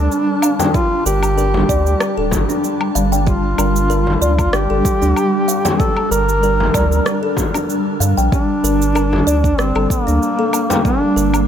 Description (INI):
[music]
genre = organic downtempo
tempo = 95 BPM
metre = 4/4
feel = swing 54% on 16ths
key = G minor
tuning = A4 = 439 Hz
[part]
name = mellow duduk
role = melody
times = 0.0-11.4 s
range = Bb3 to Bb4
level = -19 LUFS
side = equal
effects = digital delay
[part]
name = granular cloud pad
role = sustained chords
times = 0.0-11.5 s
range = G3 to A5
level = -21 LUFS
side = right 1 dB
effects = built-in reverb, sidechain pumping
[part]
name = kalimba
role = arpeggios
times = 0.0-11.3 s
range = D4 to G5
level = -22 LUFS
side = left 2 dB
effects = ping-pong delay
[part]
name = warm sub bass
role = bass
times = 0.0-11.5 s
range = D1 to G2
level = -18 LUFS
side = equal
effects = sidechain pumping
[part]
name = electronic cabasa, woodblock and rim click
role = drums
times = 0.1-11.5 s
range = none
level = -24 LUFS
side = equal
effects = none
[part]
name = frame drum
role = percussion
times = 0.6-10.8 s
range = none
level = -23 LUFS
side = left 2 dB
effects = none
[part]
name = electronic kick drum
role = drums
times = 0.7-11.0 s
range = none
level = -19 LUFS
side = equal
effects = none
[sound]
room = light reverb, small room ambience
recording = none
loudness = -13 LUFS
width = side -9 dB against mid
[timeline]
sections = 0.0-11.5 A section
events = none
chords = 0.0 Gm